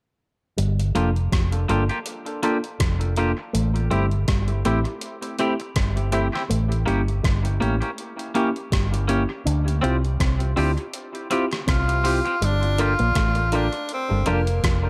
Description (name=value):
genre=lovers rock reggae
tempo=81 BPM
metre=4/4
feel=swing 55% on 16ths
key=G dorian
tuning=A4 = 440 Hz
part: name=electric guitar with an envelope filter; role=riff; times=0.6-14.9 s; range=F3 to D4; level=-33 LUFS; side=equal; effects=none
part: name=vintage muted fingered electric bass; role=bass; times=0.6-14.9 s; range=F1 to D2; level=-25 LUFS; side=equal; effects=none
part: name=gated 80s digital drum machine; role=drums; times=0.6-14.8 s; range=hi-hat, kick drum, rim click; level=-29 LUFS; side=equal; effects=overdrive, gated reverb, dub echo
part: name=tine electric piano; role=accompaniment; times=1.0-14.4 s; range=A3 to Bb4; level=-30 LUFS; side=equal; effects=dub echo
part: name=twangy electric guitar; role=stabs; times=1.0-14.4 s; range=Bb3 to G4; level=-32 LUFS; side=equal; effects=dub echo
part: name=bright tenor saxophone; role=melody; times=11.7-14.9 s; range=Bb3 to F4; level=-27 LUFS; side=equal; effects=dub echo
room=light reverb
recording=none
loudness=-23 LUFS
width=mono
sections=0.6-12.4 A section; 12.4-14.9 B section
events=none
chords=0.6 Gm7; 3.5 Am7; 6.5 A7b9; 9.5 Dm11; 12.4 Gm7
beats=| 0.58 1.32 2.06 2.80 | 3.54 4.28 5.02 5.76 | 6.50 7.24 7.98 8.72 | 9.46 10.20 10.94 11.68 | 12.42 13.16 13.90 14.64